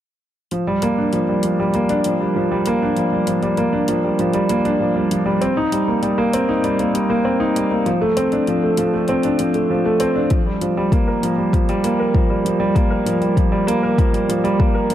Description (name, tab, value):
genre	piano and strings electronica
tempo	98 BPM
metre	4/4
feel	straight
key	G minor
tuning	A4 = 440 Hz
part	warm concert grand piano	riff	0.5-14.9 s	F3 to Bb4	-16 LUFS	equal	ping-pong delay
part	electronic hi-hat	drums	0.5-14.9 s	none	-32 LUFS	left 3 dB	none
part	electronic kick drum	drums	10.3-14.7 s	none	-17 LUFS	left 1 dB	none
room	moderate lush hall reverb, RT60 2.4 s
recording	none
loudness	-16 LUFS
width	side -11 dB against mid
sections	0.5-14.9 A section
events	none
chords	none